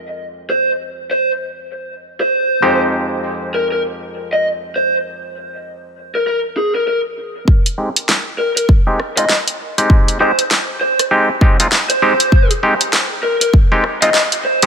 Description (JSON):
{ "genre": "glitch hop", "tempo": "99 BPM", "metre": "4/4", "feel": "swing 60% on 16ths", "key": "F minor", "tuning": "A4 = 440 Hz", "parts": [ { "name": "bright clav", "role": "stabs", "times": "0.0-14.7 s", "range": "F2 to G4", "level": "-18 LUFS", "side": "equal", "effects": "vintage 12-bit sampler grit, sidechain pumping, low-pass filter, dub echo" }, { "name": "lead guitar through a small cranked amp", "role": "melody", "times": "0.5-14.6 s", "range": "Ab4 to Eb5", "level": "-18 LUFS", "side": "equal", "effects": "overdrive, vintage 12-bit sampler grit, dub echo" }, { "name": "electronic kick drum", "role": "drums", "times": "7.5-13.7 s", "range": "none", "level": "-11 LUFS", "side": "equal", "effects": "none" }, { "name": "pop drum kit", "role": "drums", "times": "7.7-14.7 s", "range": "hi-hat, rim click, snare drum", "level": "-16 LUFS", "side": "equal", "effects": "high-pass filter on snare, low-pass filter on snare, high-pass filter on hats, low-pass filter on hats, high-pass filter on toms, low-pass filter on toms" } ], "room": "moderate lush hall reverb, RT60 2.5 s", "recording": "none", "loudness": "-13 LUFS", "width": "side -7 dB against mid", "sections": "0.0-7.5 A section; 7.5-14.7 B section", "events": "filter sweep on clav 0.0-7.5, 7.5-14.7; build-up 7.5-14.7", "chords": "0.0 Fm9; 7.5 Fm9 (rootless)" }